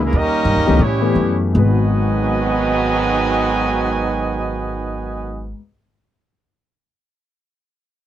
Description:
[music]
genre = jazz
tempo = 147-193 BPM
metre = 4/4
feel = swing 59% on 8ths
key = G# minor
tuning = A4 = 439 Hz
[part]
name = clear trumpet section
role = melody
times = 0.0-5.5 s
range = G#3 to G#5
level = -21 LUFS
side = right 1 dB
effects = none
[part]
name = bright trombone section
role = second line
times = 0.0-5.5 s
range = G#2 to D#4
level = -22 LUFS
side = right 6 dB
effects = none
[part]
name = upright bass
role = bass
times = 0.0-5.5 s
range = G#1 to A2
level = -20 LUFS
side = equal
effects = none
[part]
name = warm grand piano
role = accompaniment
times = 0.7-5.6 s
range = G#2 to B4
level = -23 LUFS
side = left 6 dB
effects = none
[sound]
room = light reverb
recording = dry, close 1970s-style studio recording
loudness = -15 LUFS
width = side -11 dB against mid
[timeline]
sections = 0.0-1.5 A section; 1.5-4.8 B section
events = slowing down 0.0-1.5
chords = 0.1 D#7b9; 0.8 A9; 1.5 G#m7

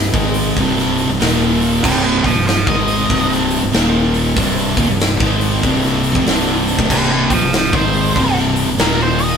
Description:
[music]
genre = stoner and doom metal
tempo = 95 BPM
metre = 4/4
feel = swing 64% on 8ths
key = C minor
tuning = A4 = 440 Hz
[part]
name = overdriven tonewheel organ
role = sustained chords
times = 0.0-9.4 s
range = C3 to F4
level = -28 LUFS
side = left 1 dB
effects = none
[part]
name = thick fuzz guitar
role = riff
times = 0.0-9.4 s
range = C2 to Ab3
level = -21 LUFS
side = left 8 dB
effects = distortion
[part]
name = thick fuzz guitar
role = riff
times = 0.0-9.4 s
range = C2 to Ab3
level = -18 LUFS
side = right 6 dB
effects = distortion
[part]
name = tight distorted guitar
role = riff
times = 0.0-9.4 s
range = C2 to Ab3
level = -22 LUFS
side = left 1 dB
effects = distortion
[part]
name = fuzz fingered electric bass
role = bass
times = 0.0-9.4 s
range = C1 to Ab1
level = -23 LUFS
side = left 1 dB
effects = overdrive
[part]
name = big rock drum kit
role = drums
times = 0.1-9.3 s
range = crash cymbal, hi-hat, kick drum, snare drum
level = -18 LUFS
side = left 1 dB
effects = none
[part]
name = octave-fuzz lead guitar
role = melody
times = 1.8-9.4 s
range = G4 to F5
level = -19 LUFS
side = right 2 dB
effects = distortion
[sound]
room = moderate stone room reverb, RT60 1.0 s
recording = band playing live in one room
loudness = -13 LUFS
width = side -7 dB against mid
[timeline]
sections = 0.0-9.4 A section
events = lead electric guitar solo 0.0-9.4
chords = 0.0 Cm; 1.2 Eb5; 1.8 Cm; 3.7 Eb5; 4.4 Cm; 8.8 Eb5

